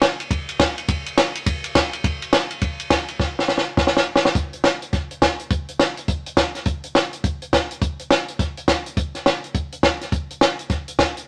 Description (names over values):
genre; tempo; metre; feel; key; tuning
rock; 208 BPM; 4/4; swing 62% on 8ths; none; none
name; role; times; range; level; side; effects
compact cocktail drum kit; drums; 0.0-11.2 s; hi-hat, kick drum, ride cymbal, snare drum; -21 LUFS; equal; none
room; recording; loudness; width
moderate studio reverb, RT60 0.7 s; none; -21 LUFS; mono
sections
0.0-4.4 A section; 4.4-11.3 B section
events
drum fill 3.2-4.4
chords
none